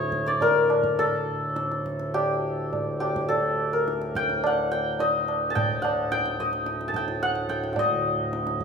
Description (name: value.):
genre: indian classical, Hindustani.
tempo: 106 BPM.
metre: 4/4.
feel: straight.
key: D raga bhairav.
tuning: A4 = 439 Hz.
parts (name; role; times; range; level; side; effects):
santur; melody; 0.0-8.6 s; G4 to A5; -25 LUFS; left 2 dB; none.
pedal harmonium; drone; 0.0-8.6 s; D2 to A2; -31 LUFS; right 1 dB; none.
tabla; percussion; 0.1-8.6 s; none; -29 LUFS; right 2 dB; none.
room: wet recital hall reverb, RT60 1.8 s.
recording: minimal, uncompressed stereo recording.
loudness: -23 LUFS.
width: side -6 dB against mid.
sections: 0.0-7.8 A section.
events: speeding up 0.0-8.6.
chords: none.